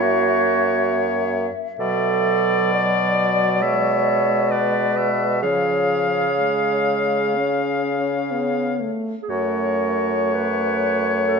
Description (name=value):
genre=classical, slow romantic movement for wind quintet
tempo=56-70 BPM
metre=4/4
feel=rubato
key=F# minor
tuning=A4 = 444 Hz
part: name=mellow silver concert flute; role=melody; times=0.0-11.4 s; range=C#5 to E5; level=-25 LUFS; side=left 10 dB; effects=none
part: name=bright oboe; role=second line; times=0.0-11.4 s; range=C#5 to E#5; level=-24 LUFS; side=left 6 dB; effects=none
part: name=clear French horn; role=accompaniment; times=0.0-11.4 s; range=E#3 to C#4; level=-27 LUFS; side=left 1 dB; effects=none
part: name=warm clarinet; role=accompaniment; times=0.0-11.4 s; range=F#4 to D5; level=-23 LUFS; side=right 7 dB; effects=none
part: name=clear bassoon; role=bass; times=0.0-11.4 s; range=F#2 to C#3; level=-24 LUFS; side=right 3 dB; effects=none
room=moderate recital hall reverb, RT60 1.7 s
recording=nothing above 7.7 kHz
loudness=-18 LUFS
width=side -5 dB against mid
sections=0.0-11.4 A section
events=none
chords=0.0 F#7; 1.8 Bm7; 3.6 G#dim/B; 5.4 C#; 9.3 F#m